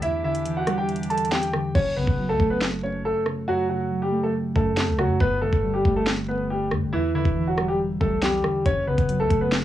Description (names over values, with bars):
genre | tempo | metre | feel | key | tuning
hip hop, drill | 139 BPM | 4/4 | half-time | F# phrygian | A4 = 440 Hz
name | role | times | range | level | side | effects
clear concert grand piano | melody | 0.0-9.5 s | E3 to A5 | -24 LUFS | equal | low-pass filter, cassette tape
muted felt-like synth keys | accompaniment | 0.0-9.6 s | E2 to A3 | -26 LUFS | equal | chorus, low-pass filter, cassette tape
clear woodwind section | sustained chords | 0.0-1.7 s | E3 to G4 | -38 LUFS | right 1 dB | cassette tape
drill drum kit | drums | 0.0-9.6 s | crash cymbal, finger snaps, hi-hat, kick drum, rim click, snare drum | -24 LUFS | equal | none
hard-hitting 808-style bass | bass | 1.8-9.6 s | E1 to G2 | -31 LUFS | equal | none
room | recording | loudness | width
light reverb | home recording on cassette, small room ambience | -21 LUFS | side -12 dB against mid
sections
0.0-1.8 A section; 1.8-9.6 B section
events
break 0.0-1.8; hi-hats muted 1.8-8.7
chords
0.0 Em7; 1.8 F#m; 5.2 Gadd9; 6.9 Em7; 8.7 F#m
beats
| 0.02 0.46 0.89 1.32 | 1.75 2.18 2.61 3.05 | 3.48 3.91 4.34 4.77 | 5.20 5.64 6.07 6.50 | 6.93 7.36 7.79 8.23 | 8.66 9.09 9.52